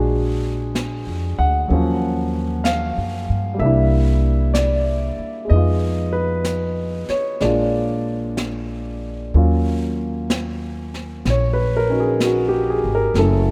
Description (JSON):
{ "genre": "jazz ballad", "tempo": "63 BPM", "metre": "4/4", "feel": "swing 66% on 8ths", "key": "Eb minor", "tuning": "A4 = 440 Hz", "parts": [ { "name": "warm concert grand piano", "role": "accompaniment", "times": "0.0-13.5 s", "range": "F3 to Gb5", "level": "-23 LUFS", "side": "equal", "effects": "none" }, { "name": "upright bass", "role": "bass", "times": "0.0-13.5 s", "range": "Gb1 to G2", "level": "-23 LUFS", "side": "equal", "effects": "none" }, { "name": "jazz brush drum kit", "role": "drums", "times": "0.8-13.5 s", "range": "brushed snare drum, hi-hat, snare drum", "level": "-30 LUFS", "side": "equal", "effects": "none" } ], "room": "moderate plate reverb, RT60 3.3 s", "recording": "rough home demo mix", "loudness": "-20 LUFS", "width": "mono", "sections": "0.0-9.3 A section; 9.3-13.5 B section", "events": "none", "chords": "0.0 Bb7b13; 1.7 Ebm7; 3.6 C7; 5.5 Fm7b5; 7.4 Bb7; 9.3 Ebm7", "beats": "0.76 | 1.71 2.65 3.60 4.55 | 5.50 6.45 7.41 8.37 | 9.34 10.30 11.25 12.20 | 13.15" }